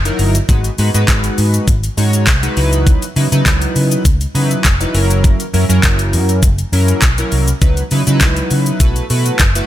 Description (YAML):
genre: dance-pop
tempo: 101 BPM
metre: 4/4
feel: straight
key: C# dorian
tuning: A4 = 440 Hz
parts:
  - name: vintage muted fingered electric bass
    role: bass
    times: 0.0-9.6 s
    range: E#1 to C#3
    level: -15 LUFS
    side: equal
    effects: sidechain pumping
  - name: chorused polysynth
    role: accompaniment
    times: 0.1-9.7 s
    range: F#3 to C#5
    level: -18 LUFS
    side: right 1 dB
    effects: sidechain pumping
  - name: pop drum kit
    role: drums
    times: 0.1-9.7 s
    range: handclaps, hi-hat, kick drum, shaker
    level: -15 LUFS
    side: equal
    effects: none
room: little or no reverb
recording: none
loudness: -11 LUFS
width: side -13 dB against mid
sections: 0.0-9.7 A section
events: none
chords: 0.5 G#m7; 2.6 C#m11; 4.9 F#7; 7.6 C#m11; 8.8 B7sus4